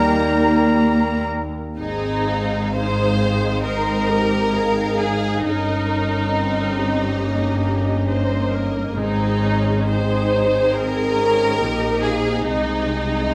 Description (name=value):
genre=classical, slow romantic movement for symphony orchestra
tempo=68 BPM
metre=4/4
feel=uneven beats, rubato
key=Ab major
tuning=A4 = 437 Hz
part: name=rich studio violin section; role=melody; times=0.0-13.3 s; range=C5 to Bb5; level=-36 LUFS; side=equal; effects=none
part: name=mellow clarinet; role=second line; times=0.0-1.4 s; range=Eb4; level=-26 LUFS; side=equal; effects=none
part: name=mellow hollow flute section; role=second line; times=0.0-1.4 s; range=Bb5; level=-30 LUFS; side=equal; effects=none
part: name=warm oboe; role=second line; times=0.0-1.4 s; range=Bb4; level=-29 LUFS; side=equal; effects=none
part: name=warm studio violin section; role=second line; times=0.0-13.3 s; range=Eb4 to C5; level=-24 LUFS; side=equal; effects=none
part: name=mellow bassoon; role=accompaniment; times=0.0-1.5 s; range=G3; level=-28 LUFS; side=equal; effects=none
part: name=warm studio viola section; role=accompaniment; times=0.0-13.3 s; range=Bb3 to C5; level=-29 LUFS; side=equal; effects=none
part: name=dark French horn section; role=sustained chords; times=0.0-13.3 s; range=G3 to Eb4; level=-30 LUFS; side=equal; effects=none
part: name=rich studio double bass section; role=bass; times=0.0-13.3 s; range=G1 to Eb2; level=-28 LUFS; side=equal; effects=none
part: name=warm studio cello section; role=bass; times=0.0-13.3 s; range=G2 to Bb3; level=-26 LUFS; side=equal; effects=none
part: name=timpani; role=percussion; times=9.0-10.3 s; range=none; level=barely audible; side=none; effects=none
room=wet recital hall reverb, RT60 1.7 s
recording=none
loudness=-20 LUFS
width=mono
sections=0.0-1.8 A section; 1.8-13.3 B section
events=none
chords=0.0 Eb; 1.8 Ab; 5.4 Eb7/G; 8.9 Ab; 12.4 Ab/C